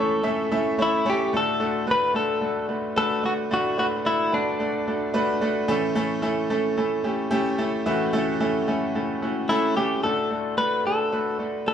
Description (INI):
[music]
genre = pop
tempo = 110 BPM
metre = 4/4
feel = straight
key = unclear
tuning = A4 = 440 Hz
[part]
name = direct-recorded clean electric guitar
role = melody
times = 0.0-5.4, 9.5-11.7 s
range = D4 to B4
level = -24 LUFS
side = left 2 dB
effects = vibrato effect
[part]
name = bright grand piano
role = accompaniment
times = 0.0-11.7 s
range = D2 to E5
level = -23 LUFS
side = right 1 dB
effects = none
[sound]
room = moderate large studio reverb, RT60 0.8 s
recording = band playing live in one room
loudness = -21 LUFS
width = side -8 dB against mid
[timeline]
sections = 0.0-1.3 A section; 1.3-10.0 B section; 10.0-11.7 C section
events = none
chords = 0.0 A; 1.3 D; 5.7 A; 10.0 D